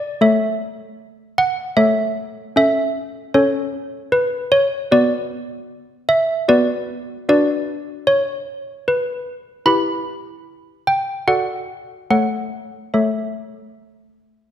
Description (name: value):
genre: classical, tune for handbells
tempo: 76 BPM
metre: 3/4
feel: straight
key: unclear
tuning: A4 = 440 Hz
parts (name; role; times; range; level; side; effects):
- malleted handbells; solo; 0.0-14.5 s; A3 to B5; -17 LUFS; equal; none
room: moderate scoring stage reverb, RT60 1.6 s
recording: none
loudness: -17 LUFS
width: side -10 dB against mid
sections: 0.0-14.5 A section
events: none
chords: 0.2 A; 2.6 A/C#; 4.9 Bm; 7.3 Bm/D; 9.7 Em; 11.3 D/F#; 12.1 A